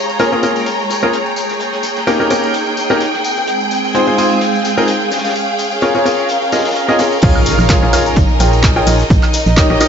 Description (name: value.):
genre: piano house.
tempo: 128 BPM.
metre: 4/4.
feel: swing 54% on 16ths.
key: unclear.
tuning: A4 = 440 Hz.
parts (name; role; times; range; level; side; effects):
string machine, violins; sustained chords; 0.0-9.9 s; Eb4 to G5; -20 LUFS; right 1 dB; ensemble chorus, sidechain pumping.
dark symphonic string section; texture; 0.0-9.9 s; Ab3 to Bb5; -19 LUFS; right 1 dB; sidechain pumping.
tambourine; percussion; 0.1-9.9 s; none; -28 LUFS; left 4 dB; none.
clear upright piano; riff; 0.2-9.9 s; Bb3 to G5; -16 LUFS; left 1 dB; sidechain pumping, ping-pong delay.
warm soul drum kit; drums; 0.2-9.9 s; hi-hat, snare drum; -28 LUFS; left 1 dB; none.
organ-like FM bass; bass; 7.2-9.8 s; Ab1 to Bb1; -14 LUFS; right 1 dB; sidechain pumping.
electronic kick drum; drums; 7.2-9.7 s; none; -14 LUFS; equal; overdrive, small room ambience.
punchy analog drum machine; drums; 7.2-9.9 s; cabasa, crash cymbal, handclaps, hi-hat, woodblock; -19 LUFS; equal; overdrive, small room ambience.
impact; sound effects; 7.2-9.1 s; none; -21 LUFS; equal; none.
room: moderate lush hall reverb, RT60 2.1 s.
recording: nothing above 7.8 kHz.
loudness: -11 LUFS.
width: side -7 dB against mid.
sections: 0.0-7.2 A section; 7.2-9.9 B section.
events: drop 7.2-9.9; impact 7.2-9.1.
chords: 0.0 Bbm7; 1.6 Eb7/Bb; 3.2 Ab6; 5.1 Db6; 9.1 Eb7/Bb.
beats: 0.20 0.67 1.13 | 1.60 2.07 2.54 3.01 | 3.48 3.95 4.42 4.88 | 5.35 5.82 6.29 6.76 | 7.23 7.70 8.16 8.63 | 9.10 9.57.